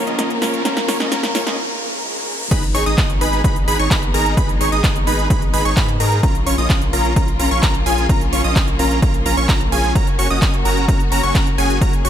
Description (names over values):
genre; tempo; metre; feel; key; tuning
EDM, festival progressive house; 129 BPM; 4/4; straight; unclear; A4 = 438 Hz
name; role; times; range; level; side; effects
electric guitar at the edge of break-up; accompaniment; 0.0-1.6 s; A#3 to A#4; -27 LUFS; left 1 dB; spring reverb, sidechain pumping, tape echo
rich studio string section; sustained chords; 0.0-12.1 s; A#2 to A#4; -27 LUFS; left 2 dB; sidechain pumping
dense compressed supersaw; riff; 0.0-12.1 s; C#4 to D#5; -22 LUFS; right 1 dB; sidechain pumping, tape echo
riser and swell; sound effects; 0.0-2.5 s; none; -27 LUFS; right 2 dB; none
big-room dance drum kit; drums; 0.1-12.1 s; crash cymbal, handclaps, hi-hat, snare drum; -24 LUFS; right 1 dB; overdrive
plucky unison lead; arpeggios; 2.5-12.1 s; G#5 to D#6; -22 LUFS; equal; phaser, sidechain pumping, tape echo
saturated sub bass; bass; 2.5-12.1 s; F#1 to G#2; -21 LUFS; equal; sidechain pumping
electronic kick drum; drums; 2.5-11.9 s; none; -17 LUFS; equal; overdrive
room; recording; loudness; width
little or no reverb; high-pass filter; -14 LUFS; side -10 dB against mid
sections
0.0-2.5 A section; 2.5-12.1 B section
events
build-up 0.0-2.5; drum fill 0.0-1.6; riser 0.0-2.5; filter sweep 0.0-2.5; break 1.6-2.5; swell 1.6-2.5; drop 2.5-12.1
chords
0.0 A#m; 2.5 G#m; 6.2 A#m; 10.0 F#